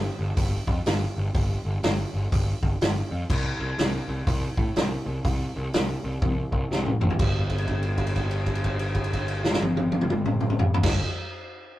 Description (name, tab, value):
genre	blues rock power trio and southern rock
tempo	123 BPM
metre	4/4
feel	swing 62% on 8ths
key	unclear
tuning	A4 = 442 Hz
part	fuzz picked electric bass	bass	0.0-11.0 s	G1 to A2	-27 LUFS	equal	overdrive
part	vintage drum kit	drums	0.4-10.9 s	crash cymbal, hi-hat, kick drum, snare drum, toms	-25 LUFS	equal	none
room	light reverb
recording	rough rehearsal-room recording, tube saturation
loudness	-23 LUFS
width	side -15 dB against mid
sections	0.0-7.2 A section; 7.2-11.1 B section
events	drum fill 6.2-7.2; held note 7.2-10.8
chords	none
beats	0.37 0.86 | 1.34 1.83 2.32 2.81 | 3.29 3.78 4.27 4.76 | 5.24 5.73 6.22 6.71 | 7.19 7.68 8.17 8.65 | 9.14 9.62 10.11 10.59